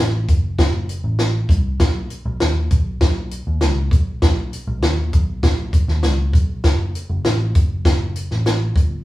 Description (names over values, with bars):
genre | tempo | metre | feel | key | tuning
uptempo 1960s-style soul | 99 BPM | 4/4 | straight | F# dorian | A4 = 440 Hz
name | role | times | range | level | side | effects
vintage muted picked electric bass | bass | 0.0-9.0 s | F#1 to D#2 | -20 LUFS | equal | none
compact cocktail drum kit | drums | 0.3-8.9 s | hi-hat, kick drum, snare drum | -17 LUFS | equal | none
room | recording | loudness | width
moderate studio reverb, RT60 0.8 s | band playing live in one room, small room reverb | -16 LUFS | side -16 dB against mid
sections
0.0-9.0 A section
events
none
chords
none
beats
0.58 1.19 | 1.80 2.40 3.01 3.61 | 4.22 4.83 5.43 6.04 | 6.64 7.25 7.85 8.46